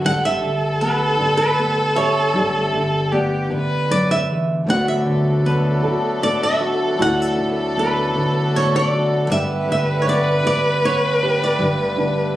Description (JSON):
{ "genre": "acoustic folk-pop ballad", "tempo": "78 BPM", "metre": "3/4", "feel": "straight", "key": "unclear", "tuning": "A4 = 439 Hz", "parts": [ { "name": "flamenco guitar", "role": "melody", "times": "0.0-12.4 s", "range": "B4 to F#5", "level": "-21 LUFS", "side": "right 1 dB", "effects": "none" }, { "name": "dark violin", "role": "second line", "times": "0.0-12.4 s", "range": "G4 to B4", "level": "-22 LUFS", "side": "equal", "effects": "none" }, { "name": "fingerpicked steel-string acoustic guitar", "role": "accompaniment", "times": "0.0-12.4 s", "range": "D2 to G4", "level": "-21 LUFS", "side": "left 1 dB", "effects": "none" }, { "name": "felt-muted upright piano", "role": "arpeggios", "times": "0.0-12.4 s", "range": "D4 to F#5", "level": "-28 LUFS", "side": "right 2 dB", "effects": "none" }, { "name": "upright bass", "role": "bass", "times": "0.0-12.4 s", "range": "G1 to D2", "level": "-31 LUFS", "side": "equal", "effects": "none" }, { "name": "hand-pumped harmonium", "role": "sustained chords", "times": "4.7-12.4 s", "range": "F#3 to A4", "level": "-28 LUFS", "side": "equal", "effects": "none" } ], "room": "moderate studio reverb, RT60 0.8 s", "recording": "recorded on a phone in the room, studio reverb, compression", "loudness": "-16 LUFS", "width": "side -14 dB against mid", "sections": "0.0-12.4 A section", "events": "none", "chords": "0.0 Gadd9; 4.7 D6; 9.3 Gadd9", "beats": "| 0.05 0.81 1.57 | 2.34 3.11 3.89 | 4.67 5.45 6.22 | 7.00 7.77 8.54 | 9.30 10.07 10.83 | 11.60" }